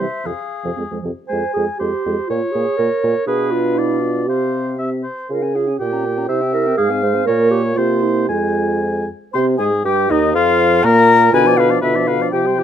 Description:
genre	quick classical-period movement for wind quintet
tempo	120 BPM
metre	2/4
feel	rubato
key	F minor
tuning	A4 = 436 Hz
part	concert flute	melody	0.0-12.6 s	C5 to C6	-21 LUFS	left 8 dB	none
part	warm oboe	second line	0.0-12.6 s	Eb4 to Ab5	-22 LUFS	left 2 dB	none
part	dark clarinet	accompaniment	0.0-12.6 s	F3 to C5	-21 LUFS	right 6 dB	none
part	mellow French horn	accompaniment	0.0-12.6 s	C3 to F4	-22 LUFS	equal	none
part	dark bassoon	bass	0.0-12.6 s	Eb2 to Db3	-19 LUFS	right 2 dB	none
room	light reverb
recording	dark, warm production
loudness	-14 LUFS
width	side -9 dB against mid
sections	0.0-1.3 A section; 1.3-9.3 B section; 9.3-12.6 B section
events	none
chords	0.3 Fm; 2.3 Bbm; 3.3 Bdim; 4.3 Csus4; 4.8 C; 5.3 Db; 5.8 Gdim/Bb; 6.3 C; 6.8 Fm/Ab; 7.3 Bbm; 7.8 C7; 8.3 Fm; 9.3 Abmaj7; 10.3 Bb5/F; 11.3 Bdim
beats	| 0.26 0.78 | 1.30 1.80 | 2.29 2.79 | 3.27 3.77 | 4.28 4.79 | 5.30 5.80 | 6.29 6.79 | 7.27 7.77 | 8.29 8.82 | 9.34 9.84 | 10.34 10.83 | 11.32 11.82 | 12.33

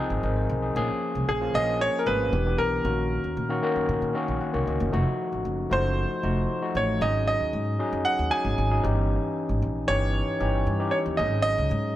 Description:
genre	pop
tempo	115 BPM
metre	4/4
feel	straight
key	unclear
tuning	A4 = 440 Hz
part	overdriven tine electric piano	accompaniment	0.0-12.0 s	Eb3 to Gb5	-28 LUFS	left 2 dB	lush chorus
part	upright bass	bass	0.1-11.9 s	E1 to Bb2	-27 LUFS	equal	none
part	clear grand piano	melody	1.3-12.0 s	Ab4 to Ab5	-27 LUFS	right 1 dB	none
room	light reverb, small room ambience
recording	none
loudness	-23 LUFS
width	side -13 dB against mid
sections	0.0-4.9 A section; 4.9-12.0 B section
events	tine electric piano fill 3.9-4.9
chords	0.0 Fm7; 0.8 Bbm7; 2.3 Em7; 2.8 Ebm7/Bb; 4.9 F7b9; 7.0 Ab7sus4; 8.8 Eb7b9/G; 11.2 Ab7sus4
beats	0.23 | 0.76 1.28 1.80 2.32 | 2.84 3.37 3.89 4.41 | 4.93 5.45 5.97 6.49 | 7.01 7.54 8.06 8.58 | 9.10 9.62 10.14 10.66 | 11.19 11.71

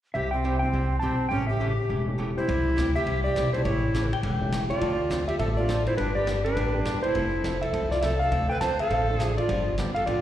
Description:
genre	country, western swing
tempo	206 BPM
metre	4/4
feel	swing 62% on 8ths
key	C major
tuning	A4 = 440 Hz
part	clean lap steel guitar	melody	0.1-10.2 s	B4 to A5	-29 LUFS	equal	slapback echo
part	archtop guitar, miked and amplified	accompaniment	0.1-10.2 s	C3 to A4	-34 LUFS	right 3 dB	slapback echo
part	upright bass	bass	0.1-10.2 s	E1 to D2	-28 LUFS	equal	none
part	bright reedy tenor recorder	second line	0.2-10.2 s	C4 to C5	-29 LUFS	equal	slapback echo
part	warm upright piano	accompaniment	0.6-10.2 s	F3 to A4	-35 LUFS	left 4 dB	slapback echo
part	vintage drum kit	drums	2.5-10.2 s	hi-hat, kick drum, ride cymbal, snare drum	-36 LUFS	left 1 dB	none
part	pedal steel guitar	second line	4.1-4.6 s	G5	-33 LUFS	left 6 dB	slapback echo
room	light reverb, studio ambience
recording	live gig heard through the venue's PA, recital hall reverb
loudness	-23 LUFS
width	side -12 dB against mid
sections	0.2-2.5 A section; 2.5-10.2 B section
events	none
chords	0.2 C; 1.3 A7; 2.5 C; 3.6 A7; 4.8 Dm7; 6.0 G; 7.1 Fmaj7; 8.3 Dm7; 9.5 G7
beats	| 0.15 0.44 0.73 1.03 | 1.32 1.61 1.90 2.19 | 2.48 2.77 3.06 3.36 | 3.65 3.94 4.23 4.52 | 4.81 5.11 5.40 5.69 | 5.98 6.27 6.56 6.86 | 7.15 7.44 7.73 8.02 | 8.32 8.61 8.90 9.19 | 9.48 9.78 10.07

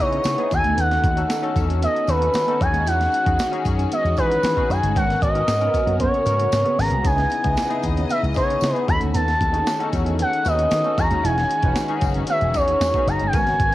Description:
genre	polished 1980s jazz-funk pop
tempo	115 BPM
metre	4/4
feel	straight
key	unclear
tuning	A4 = 440 Hz
part	expressive portamento lead	melody	0.0-13.7 s	B4 to B5	-21 LUFS	right 1 dB	chorus, cassette tape
part	barky tine electric piano	accompaniment	0.0-13.7 s	A#3 to B4	-27 LUFS	left 6 dB	overdrive, analog chorus
part	warm studio string section	sustained chords	0.0-13.7 s	C#3 to D#5	-32 LUFS	equal	none
part	slap bass with an envelope filter	bass	0.0-13.7 s	E1 to E3	-23 LUFS	equal	none
part	mellow electric guitar	riff	0.1-13.6 s	G#3 to E4	-32 LUFS	right 8 dB	lush chorus
part	breakbeat sampler-style drum kit	drums	0.1-13.7 s	hi-hat, kick drum, snare drum	-26 LUFS	equal	cassette tape
part	tambourine	percussion	0.2-13.5 s	none	-42 LUFS	right 10 dB	none
room	light reverb, digital ambience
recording	home recording on cassette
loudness	-18 LUFS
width	side -15 dB against mid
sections	0.0-13.7 A section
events	none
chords	0.0 C#m9; 0.5 B7; 2.6 Emaj13; 5.0 G#m11; 7.1 C#m9; 8.9 B7; 11.0 Emaj13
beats	0.25 | 0.77 1.29 1.82 2.34 | 2.86 3.39 3.91 4.43 | 4.96 5.48 6.00 6.53 | 7.05 7.57 8.10 8.62 | 9.14 9.67 10.19 10.72 | 11.24 11.76 12.29 12.81 | 13.34

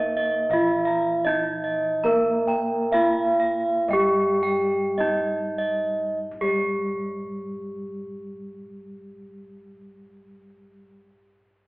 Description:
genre	gamelan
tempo	46-90 BPM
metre	4/4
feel	straight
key	unclear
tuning	A4 = 438 Hz
part	gamelan-type bronze metallophone	melody	0.0-11.0 s	G3+20c to Bb4	-25 LUFS	equal	none
part	gamelan-type bronze metallophone	accompaniment	0.0-11.0 s	F3-40c to Bb3	-34 LUFS	equal	none
part	gamelan-type bossed gongs	arpeggios	0.0-11.0 s	G4+20c to Bb5	-29 LUFS	equal	none
part	gamelan-type bronze metallophone	arpeggios	0.0-11.0 s	G4+20c to Bb5	-26 LUFS	right 1 dB	none
part	gamelan-type bossed gongs	bass	0.0-10.9 s	Bb1 to Bb4	-33 LUFS	equal	none
room	wet recital hall reverb, RT60 1.7 s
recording	heard from further back in the room, telephone sound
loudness	-21 LUFS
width	side -23 dB against mid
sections	0.0-6.2 A section; 6.2-11.5 B section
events	slowing down 0.0-6.2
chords	none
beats	0.51 1.24 | 2.04 2.92 3.89 4.97 | 6.20 7.52 8.83 10.14

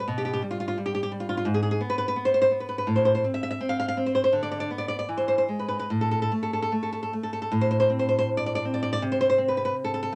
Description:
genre	romantic piece for solo classical guitar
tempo	72-87 BPM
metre	2/4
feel	rubato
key	A minor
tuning	A4 = 443 Hz
part	nylon-string guitar	solo	0.0-10.2 s	G#2 to F5	-26 LUFS	equal	none
room	moderate small room reverb, RT60 0.5 s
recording	none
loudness	-26 LUFS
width	mono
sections	0.0-7.5 A section; 7.5-10.2 B section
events	none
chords	0.1 G/B; 1.5 G#m; 2.9 Am; 4.3 Bm/D; 5.1 E; 5.9 N.C.; 7.5 Am; 9.0 Am/C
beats	| 0.07 0.76 | 1.46 2.16 | 2.88 3.61 | 4.33 5.09 | 5.90 6.72 | 7.52 8.26 | 9.00 9.75

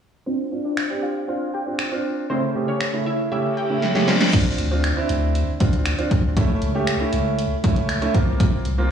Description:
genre	dance-pop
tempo	118 BPM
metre	4/4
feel	straight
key	D minor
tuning	A4 = 444 Hz
part	analog pluck	melody	0.3-3.7 s	C4 to G5	-27 LUFS	left 2 dB	chorus, low-pass filter, tape echo
part	warm grand piano	accompaniment	0.3-8.9 s	C#3 to G4	-23 LUFS	right 3 dB	sidechain pumping, low-pass filter
part	punchy analog drum machine	drums	0.8-8.8 s	crash cymbal, finger snaps, hi-hat, kick drum, snare drum	-21 LUFS	equal	none
part	reverse cymbal	sound effects	3.6-4.3 s	none	-29 LUFS	left 5 dB	none
part	sub bass with octave	bass	4.6-8.9 s	C2 to D2	-22 LUFS	left 1 dB	sidechain pumping
room	light reverb, digital ambience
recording	played on a big sound system in a bare room, stone room reverb, small room ambience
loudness	-19 LUFS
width	side -8 dB against mid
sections	0.3-4.3 A section; 4.3-8.9 B section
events	filter sweep 0.3-4.3; reverse cymbal 3.6-4.3; drum fill 3.8-4.3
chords	0.3 Dm7; 2.3 A/C#; 4.1 Dm7; 6.4 A/C#; 8.1 C7sus4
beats	| 0.27 0.77 1.28 1.79 | 2.30 2.81 3.32 3.82 | 4.33 4.84 5.35 5.86 | 6.37 6.88 7.38 7.89 | 8.40 8.91

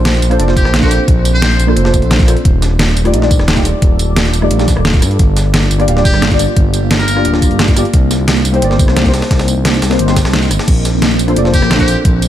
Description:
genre	liquid drum and bass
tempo	175 BPM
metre	4/4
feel	straight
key	Bb major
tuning	A4 = 440 Hz
part	deep mellow chord stab	accompaniment	0.0-12.3 s	A3 to F5	-17 LUFS	left 1 dB	chorus, ping-pong delay
part	shimmering ambient pad	sustained chords	0.0-12.3 s	G3 to D5	-21 LUFS	right 1 dB	chorus, built-in reverb, phaser, sidechain pumping
part	smooth gliding synth bass	bass	0.0-12.3 s	D1 to G2	-14 LUFS	equal	none
part	breakbeat sampler-style drum kit	drums	0.1-12.3 s	hi-hat, snare drum	-24 LUFS	equal	high-pass filter on hats, high-pass filter on snare
part	pop drum kit	drums	0.1-12.3 s	crash cymbal, hi-hat, rim click, snare drum, tambourine	-17 LUFS	right 1 dB	overdrive
part	trumpet with metal mute	melody	0.6-1.7, 6.1-7.3, 11.5-12.0 s	G4 to C5	-20 LUFS	left 1 dB	ping-pong delay
part	electronic kick drum	drums	0.6-12.1 s	none	-12 LUFS	equal	overdrive
room	little or no reverb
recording	none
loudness	-9 LUFS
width	side -12 dB against mid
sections	0.0-12.3 A section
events	kick drops out 10.3-10.7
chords	0.0 Bbmaj9; 2.5 Ebmaj9#11; 5.0 Gm7; 7.9 Cm7; 10.7 Bbmaj9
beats	0.05 0.40 0.74 | 1.08 1.42 1.77 2.11 | 2.45 2.79 3.14 3.48 | 3.82 4.17 4.51 4.85 | 5.20 5.54 5.88 6.22 | 6.57 6.91 7.25 7.59 | 7.94 8.28 8.62 8.97 | 9.31 9.65 9.99 10.34 | 10.68 11.02 11.37 11.71 | 12.05

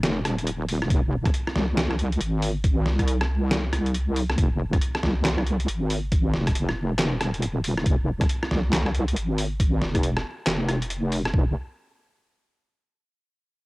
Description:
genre	deep dubstep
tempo	138 BPM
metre	4/4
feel	swing 62% on 16ths, half-time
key	F minor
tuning	A4 = 440 Hz
part	wobble bass	bass	0.0-11.5 s	Eb1 to C2	-24 LUFS	equal	chorus
part	trip hop sampler-style drum kit	drums	0.0-11.3 s	handclaps, hi-hat, rim click, snare drum	-27 LUFS	equal	overdrive, cassette tape
part	electronic kick drum	drums	0.9-11.4 s	none	-23 LUFS	equal	overdrive, cassette tape
room	light reverb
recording	home recording on cassette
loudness	-22 LUFS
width	side -22 dB against mid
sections	0.0-11.3 A section; 11.3-13.1 B section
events	filter sweep on wobble bass 0.0-11.3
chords	none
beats	0.03 0.47 | 0.90 1.34 1.77 2.21 | 2.64 3.08 3.51 3.94 | 4.38 4.82 5.25 5.68 | 6.12 6.55 6.99 7.42 | 7.86 8.29 8.73 9.16 | 9.60 10.03 10.47 10.90 | 11.34

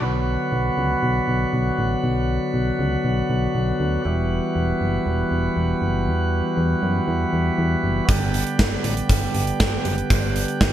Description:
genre	synth-pop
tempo	119 BPM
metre	4/4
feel	straight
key	unclear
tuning	A4 = 441 Hz
part	pipe organ, sparkling flutes	sustained chords	0.0-10.7 s	D3 to B4	-22 LUFS	equal	none
part	solid FM bass	bass	0.0-10.7 s	E1 to F#2	-23 LUFS	equal	none
part	gated 80s drum kit	drums	8.1-10.7 s	hi-hat, kick drum, snare drum	-21 LUFS	equal	none
room	light reverb, studio reverb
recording	none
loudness	-19 LUFS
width	side -11 dB against mid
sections	0.0-10.7 A section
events	none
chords	0.0 Bm; 4.1 Emadd9; 8.1 G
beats	| 0.02 0.52 1.03 1.53 | 2.04 2.54 3.04 3.55 | 4.05 4.56 5.06 5.57 | 6.07 6.57 7.08 7.58 | 8.09 8.59 9.10 9.60 | 10.10 10.61

